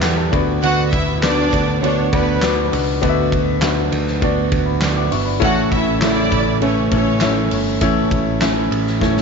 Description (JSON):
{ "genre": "piano-driven pop", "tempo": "100 BPM", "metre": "4/4", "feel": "straight", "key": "B minor", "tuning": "A4 = 441 Hz", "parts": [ { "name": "warm concert grand piano", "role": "accompaniment", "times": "0.0-9.2 s", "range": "A2 to D6", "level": "-20 LUFS", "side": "left 12 dB", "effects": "none" }, { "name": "fingerpicked plugged-in steel-string acoustic guitar", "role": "riff", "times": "0.0-9.2 s", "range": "A2 to G4", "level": "-21 LUFS", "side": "right 12 dB", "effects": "none" }, { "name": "modern bright picked electric bass", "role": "bass", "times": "0.0-9.2 s", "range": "G1 to E2", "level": "-22 LUFS", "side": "equal", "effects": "none" }, { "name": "huge arena drum kit", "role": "drums", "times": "0.0-9.2 s", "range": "handclaps, hi-hat, kick drum, ride cymbal, snare drum", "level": "-22 LUFS", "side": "equal", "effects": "none" }, { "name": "warm studio violin section", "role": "second line", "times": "0.6-7.5 s", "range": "B3 to F#5", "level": "-21 LUFS", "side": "right 1 dB", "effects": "none" } ], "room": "light reverb, studio reverb", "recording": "1960s-style stereo with parts hard left and right, nothing above 7.6 kHz", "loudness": "-15 LUFS", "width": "side -5 dB against mid", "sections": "0.0-9.2 A section", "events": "grand piano fill 0.0-0.6; drum fill 9.0", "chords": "0.3 Bm; 5.4 A", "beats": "0.03 | 0.63 1.23 1.82 2.42 | 3.02 3.62 4.22 4.82 | 5.42 6.02 6.62 7.22 | 7.82 8.42 9.02" }